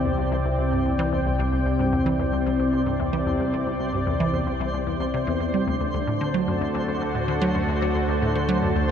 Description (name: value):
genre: ambient, sequencer-driven space music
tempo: 112 BPM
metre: 4/4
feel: straight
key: unclear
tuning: A4 = 440 Hz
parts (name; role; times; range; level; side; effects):
- lush unison pad; sustained chords; 0.0-8.9 s; C3 to A5; -24 LUFS; left 1 dB; chorus
- warm sub bass; bass; 0.0-8.9 s; C2 to D2; -31 LUFS; equal; none
- twinkling granular texture; texture; 0.0-8.9 s; C5; -33 LUFS; right 2 dB; built-in reverb
- resonant blip pluck; riff; 0.1-8.9 s; C2 to G3; -26 LUFS; equal; chorus, ping-pong delay
room: wet huge ambient reverb, RT60 8.1 s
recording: none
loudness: -21 LUFS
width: side -8 dB against mid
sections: 0.0-8.9 A section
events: none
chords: 0.0 Cadd9; 5.7 D